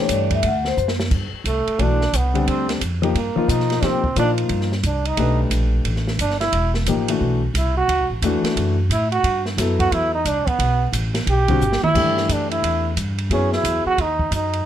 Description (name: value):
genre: jazz, small-group swing and bop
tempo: 177 BPM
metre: 4/4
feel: swing 64% on 8ths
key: G major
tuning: A4 = 440 Hz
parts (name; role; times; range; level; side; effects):
- vibraphone with medium mallets; melody; 0.0-0.7 s; C5 to F#5; -21 LUFS; left 4 dB; none
- warm grand piano; accompaniment; 0.0-14.0 s; D3 to B4; -23 LUFS; left 4 dB; none
- upright bass; bass; 0.1-14.6 s; E1 to C3; -22 LUFS; equal; none
- open jazz drum kit; drums; 0.1-14.6 s; crash cymbal, hi-hat, kick drum, ride cymbal, snare drum, toms; -26 LUFS; right 1 dB; none
- bright trombone; second line; 1.5-14.7 s; A3 to G4; -21 LUFS; right 3 dB; none
room: light reverb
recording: close, detailed microphones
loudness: -17 LUFS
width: side -10 dB against mid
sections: 0.0-1.1 A section; 1.1-12.0 B section; 12.0-14.7 B section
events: drum fill 0.8-1.1, 11.6-12.0; trombone solo 1.1-14.7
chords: 0.4 D; 1.1 G69; 2.5 Dm7; 3.1 G7alt; 3.8 Cm7; 5.2 Gadd9; 6.5 Em9; 7.9 Dadd9; 9.2 G69; 12.0 Gsus2; 13.3 E69; 14.0 Ebm